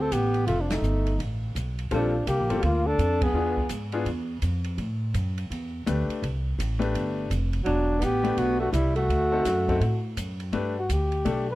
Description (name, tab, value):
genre	jazz, small-group swing and bop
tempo	167 BPM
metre	4/4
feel	swing 63% on 8ths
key	G major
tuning	A4 = 440 Hz
part	mellow flugelhorn	melody	0.0-3.7, 7.7-11.6 s	D4 to B4	-27 LUFS	left 1 dB	none
part	breathy alto saxophone	second line	0.0-3.7, 7.6-10.1 s	F3 to D4	-30 LUFS	right 3 dB	none
part	upright bass	bass	0.0-11.6 s	E1 to A2	-27 LUFS	equal	none
part	open jazz drum kit	drums	0.1-11.4 s	hi-hat, kick drum, ride cymbal, snare drum	-36 LUFS	right 1 dB	none
part	bright upright piano	accompaniment	1.9-11.5 s	G3 to B4	-29 LUFS	left 4 dB	none
room	small room reverb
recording	dry, close 1970s-style studio recording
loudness	-24 LUFS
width	side -17 dB against mid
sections	0.0-10.5 A section; 10.5-11.6 B section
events	band accent 0.7, 3.2; flugelhorn solo 10.5-11.6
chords	0.5 F7; 1.9 Bb6; 3.3 E7b9; 4.8 Asus2; 6.2 F69; 7.7 Em9; 9.1 D7b9; 10.5 Gadd9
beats	0.12 | 0.47 0.83 1.19 1.55 | 1.91 2.27 2.63 2.99 | 3.35 3.71 4.07 4.42 | 4.79 5.14 5.50 5.86 | 6.22 6.58 6.94 7.30 | 7.66 8.02 8.38 8.74 | 9.10 9.46 9.82 10.18 | 10.54 10.89 11.25